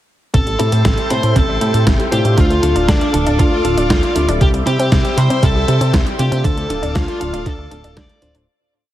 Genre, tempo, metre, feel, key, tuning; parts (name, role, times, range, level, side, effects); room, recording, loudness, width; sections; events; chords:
italo disco; 118 BPM; 4/4; straight; D minor; A4 = 441 Hz
fuzz lead guitar; melody; 0.3-8.3 s; D4 to D5; -20 LUFS; equal; distortion, tape echo
string machine, full ensemble; sustained chords; 0.3-8.5 s; A4 to E6; -24 LUFS; equal; ensemble chorus
analog pluck; arpeggios; 0.3-8.4 s; C3 to D4; -24 LUFS; right 3 dB; chorus, tape echo
chorused synth bass; bass; 0.3-8.5 s; D1 to C3; -17 LUFS; equal; tube saturation
detuned 8-bit digital drum machine; drums; 0.3-8.5 s; hi-hat, snare drum; -23 LUFS; equal
electronic kick drum; drums; 0.3-8.1 s; -16 LUFS; equal
direct-recorded clean electric guitar; stabs; 0.6-8.5 s; G3 to C5; -25 LUFS; left 2 dB; phaser
little or no reverb; heavily compressed radio sound; -12 LUFS; side -13 dB against mid
0.3-8.5 verse
fade-out 5.8-8.5
0.3 Am7; 2.4 Dm; 4.4 C; 6.4 Dm